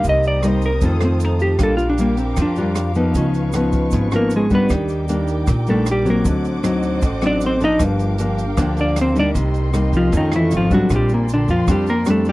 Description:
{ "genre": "bossa nova", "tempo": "155 BPM", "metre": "4/4", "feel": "straight", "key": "G minor", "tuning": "A4 = 440 Hz", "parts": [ { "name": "hollow-body jazz guitar", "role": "melody", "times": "0.0-12.3 s", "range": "Bb2 to Eb5", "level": "-19 LUFS", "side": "equal", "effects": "none" }, { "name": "nylon-string guitar", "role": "accompaniment", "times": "0.0-12.3 s", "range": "F2 to F4", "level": "-20 LUFS", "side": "left 1 dB", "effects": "none" }, { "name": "vibraphone with soft mallets", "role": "accompaniment", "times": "0.0-10.9 s", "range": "C4 to F5", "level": "-28 LUFS", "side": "right 1 dB", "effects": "none" }, { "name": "warm symphonic string section", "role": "sustained chords", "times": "0.0-12.3 s", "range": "A4 to Eb6", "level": "-31 LUFS", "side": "right 1 dB", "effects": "none" }, { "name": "upright bass", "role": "bass", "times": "0.0-12.3 s", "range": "G1 to F2", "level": "-22 LUFS", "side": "equal", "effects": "none" }, { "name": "open jazz drum kit", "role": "drums", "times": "0.0-12.3 s", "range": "hi-hat, kick drum, rim click", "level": "-24 LUFS", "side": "equal", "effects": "none" }, { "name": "tube shaker", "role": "percussion", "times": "0.0-12.3 s", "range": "none", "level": "-41 LUFS", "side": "right 12 dB", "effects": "none" } ], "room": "little or no reverb", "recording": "dry, close 1970s-style studio recording", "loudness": "-15 LUFS", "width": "side -18 dB against mid", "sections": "0.0-10.9 A section; 10.9-12.3 A section", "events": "hollow-body jazz guitar solo 0.0-12.3", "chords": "0.0 Cm7; 0.8 F7; 1.6 Bb6; 3.1 C#9; 4.7 Ebmaj7; 6.3 D7b9; 7.8 Gm7; 9.4 Cm7; 10.1 F7alt; 10.9 Bb69" }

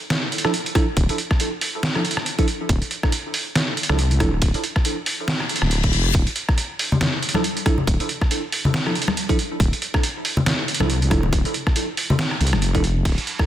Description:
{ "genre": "deep dubstep", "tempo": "139 BPM", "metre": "4/4", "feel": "swing 58% on 16ths, half-time", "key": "D minor", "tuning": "A4 = 440 Hz", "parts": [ { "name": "trip hop sampler-style drum kit", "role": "drums", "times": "0.1-13.5 s", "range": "hi-hat, ride cymbal, rim click, snare drum", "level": "-23 LUFS", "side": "right 1 dB", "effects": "studio reverb" }, { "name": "bell-like tine electric piano", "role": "stabs", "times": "0.4-4.3, 7.4-12.8 s", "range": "F3 to A4", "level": "-27 LUFS", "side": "right 3 dB", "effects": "phaser, dub echo" }, { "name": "electronic kick drum", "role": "drums", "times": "0.8-13.5 s", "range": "none", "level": "-20 LUFS", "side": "equal", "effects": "studio reverb" }, { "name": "wobble bass", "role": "bass", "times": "1.0-13.2 s", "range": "D1 to C2", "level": "-20 LUFS", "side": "equal", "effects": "chorus" }, { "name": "reverse cymbal", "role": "sound effects", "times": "5.4-6.1 s", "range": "none", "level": "-26 LUFS", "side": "left 7 dB", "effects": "none" }, { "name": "congas", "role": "percussion", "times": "6.9-12.6 s", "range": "none", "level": "-24 LUFS", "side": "left 2 dB", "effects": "dub echo" } ], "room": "light reverb", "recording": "dense, heavily limited modern master", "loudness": "-18 LUFS", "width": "side -12 dB against mid", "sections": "0.0-13.5 A section", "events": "reverse cymbal 5.4-6.1", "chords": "0.0 Dmadd9" }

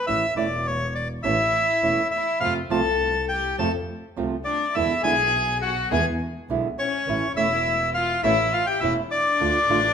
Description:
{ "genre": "tango", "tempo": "103 BPM", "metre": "4/4", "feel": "rubato", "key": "unclear", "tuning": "A4 = 442 Hz", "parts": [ { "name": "bandoneon", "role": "melody", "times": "0.0-9.9 s", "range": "C#5 to A5", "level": "-22 LUFS", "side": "left 1 dB", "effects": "none" }, { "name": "nylon-string guitar", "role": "accompaniment", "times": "0.1-9.8 s", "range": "B2 to F4", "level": "-27 LUFS", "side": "right 5 dB", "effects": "none" }, { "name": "warm double bass", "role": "bass", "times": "0.1-9.9 s", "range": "E1 to F2", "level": "-30 LUFS", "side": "equal", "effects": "none" }, { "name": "warm chamber violin section", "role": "second line", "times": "1.3-9.9 s", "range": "C#4 to A4", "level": "-27 LUFS", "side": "left 5 dB", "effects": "none" } ], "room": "wet large studio reverb, RT60 1.5 s", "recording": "minimal, uncompressed stereo recording", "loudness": "-20 LUFS", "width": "side -7 dB against mid", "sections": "0.0-9.9 A section", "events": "none", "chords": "0.1 A; 2.4 F; 4.8 E7; 7.1 A; 9.4 Dm" }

